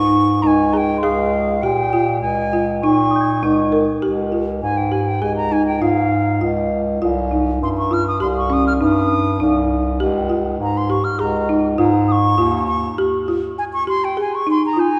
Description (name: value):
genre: contemporary instrumental, chamber music in an uneven meter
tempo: 100 BPM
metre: 5/4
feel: straight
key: Db lydian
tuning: A4 = 435 Hz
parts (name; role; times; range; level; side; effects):
- bright wooden flute; melody; 0.0-15.0 s; F5 to F6; -24 LUFS; equal; none
- folk marimba with medium mallets; arpeggios; 0.0-15.0 s; Db4 to Bb4; -22 LUFS; equal; none
- clear bass clarinet; bass; 0.0-12.9 s; C2 to Bb2; -22 LUFS; equal; none
- celesta; texture; 1.0-4.3, 10.2-15.0 s; G5 to Ab6; -35 LUFS; equal; none
room: wet church reverb, RT60 2.9 s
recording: recorded in a church or concert hall, nothing above 10.8 kHz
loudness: -18 LUFS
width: mono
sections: 0.0-4.0 A section; 4.0-15.0 B section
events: break 13.0-15.0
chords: 0.0 Eb7sus4/Db; 4.0 Dbadd9; 7.0 Cm; 10.0 Dbadd9; 13.0 Fm7